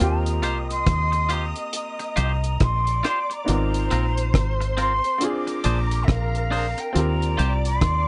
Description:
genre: lovers rock reggae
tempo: 69 BPM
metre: 4/4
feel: swing 60% on 16ths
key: Eb major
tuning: A4 = 438 Hz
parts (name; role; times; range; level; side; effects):
- breathy mellow jazz flute; melody; 0.0-8.1 s; Fb5 to D6; -29 LUFS; equal; none
- soft string machine; second line; 0.0-8.1 s; Bb4 to Eb6; -35 LUFS; equal; phaser, ensemble chorus
- clear baby grand piano; accompaniment; 0.0-8.1 s; Bb3 to Bb4; -32 LUFS; equal; none
- deep dub fingered electric bass; bass; 0.0-8.1 s; Ab1 to Eb2; -26 LUFS; equal; none
- deep reggae drum kit; drums; 0.3-8.1 s; hi-hat, kick drum, rim click; -27 LUFS; equal; none
- twangy electric guitar; stabs; 0.4-7.5 s; C4 to C5; -30 LUFS; equal; none
room: little or no reverb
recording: nothing above 10.4 kHz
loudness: -23 LUFS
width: mono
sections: 0.0-8.1 A section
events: none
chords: 0.0 Eb69; 3.5 Ab69; 5.2 Bb9; 6.9 Eb69

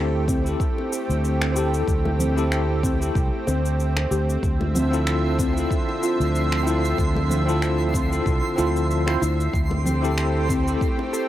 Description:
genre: sunset chillout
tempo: 94 BPM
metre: 4/4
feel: swing 55% on 16ths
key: D minor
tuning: A4 = 440 Hz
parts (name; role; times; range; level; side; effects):
- bell-like tine electric piano; accompaniment; 0.0-11.3 s; C4 to C5; -27 LUFS; left 1 dB; medium stereo tremolo, auto-pan, analog delay
- lush unison pad; sustained chords; 0.0-11.3 s; D3 to E5; -28 LUFS; right 1 dB; chorus
- fretless electric bass; bass; 0.0-10.8 s; C2 to D2; -23 LUFS; equal; none
- soft round pluck; arpeggios; 0.3-11.3 s; C4 to A4; -29 LUFS; left 1 dB; lush chorus, cassette tape, analog delay
- electronic cabasa and finger snaps; drums; 0.3-11.3 s; none; -32 LUFS; left 1 dB; none
- electronic kick drum; drums; 0.3-11.0 s; none; -25 LUFS; equal; none
- bongos and congas; percussion; 0.8-11.1 s; none; -31 LUFS; left 1 dB; none
- twinkling granular texture; texture; 5.1-11.3 s; C6; -33 LUFS; right 2 dB; built-in reverb
room: little or no reverb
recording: dry, gritty hardware recording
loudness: -20 LUFS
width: side -13 dB against mid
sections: 0.0-11.3 A section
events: none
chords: 0.0 Am7/D; 4.4 Dm9; 9.5 Am7/D

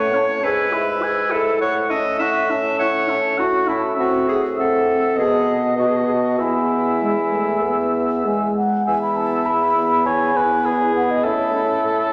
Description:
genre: quick classical-period movement for wind quintet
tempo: 101 BPM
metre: 4/4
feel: rubato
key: E major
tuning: A4 = 440 Hz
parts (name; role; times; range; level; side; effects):
- mellow baroque flute; melody; 0.0-12.1 s; D#5 to E6; -26 LUFS; equal; none
- warm oboe; second line; 0.0-12.1 s; G#4 to G#5; -26 LUFS; equal; none
- bright clarinet; accompaniment; 0.0-12.1 s; E4 to E5; -25 LUFS; equal; none
- clear French horn; accompaniment; 0.0-12.1 s; G#3 to G#4; -26 LUFS; equal; none
- dark bassoon; bass; 0.0-12.1 s; E2 to B2; -28 LUFS; equal; none
room: wet recital hall reverb, RT60 1.8 s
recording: none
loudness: -19 LUFS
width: mono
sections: 0.0-8.9 A section; 8.9-12.1 A section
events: none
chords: 0.4 E/G#; 1.6 F#m7/A; 4.0 F#m7b5/A; 5.2 B7; 6.4 E; 11.3 A

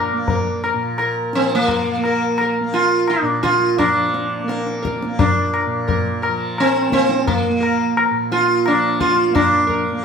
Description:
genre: indian classical, Hindustani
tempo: 86 BPM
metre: 4/4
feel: straight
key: unclear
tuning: A4 = 440 Hz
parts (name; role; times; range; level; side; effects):
- sitar; melody; 0.0-10.0 s; Bb3 to Bb4; -18 LUFS; right 1 dB; none
- tanpura; drone; 0.0-10.0 s; Bb2 to Bb3; -24 LUFS; right 4 dB; none
- tabla; percussion; 0.3-10.0 s; none; -21 LUFS; left 4 dB; none
room: wet studio reverb, RT60 0.8 s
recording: band playing live in one room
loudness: -16 LUFS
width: side -6 dB against mid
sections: 0.0-10.0 A section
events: none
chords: none

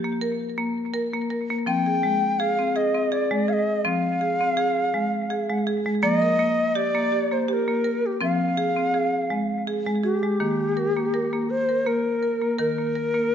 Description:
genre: world meditative, meditative tuned percussion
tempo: 82 BPM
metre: 3/4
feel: straight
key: F dorian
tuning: A4 = 441 Hz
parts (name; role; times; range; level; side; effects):
- marimba with hard mallets; arpeggios; 0.0-13.3 s; Eb3 to Bb4; -24 LUFS; equal; tape echo
- Native American-style cedar flute; melody; 1.7-13.3 s; G4 to G5; -24 LUFS; left 1 dB; none
room: wet scoring stage reverb, RT60 1.7 s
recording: nothing above 7.8 kHz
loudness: -21 LUFS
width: side -8 dB against mid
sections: 0.0-10.4 A section; 10.4-13.3 B section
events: none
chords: 0.0 Fsus4; 1.7 Fm; 6.0 Eb/F; 8.2 Fm; 10.4 Eb

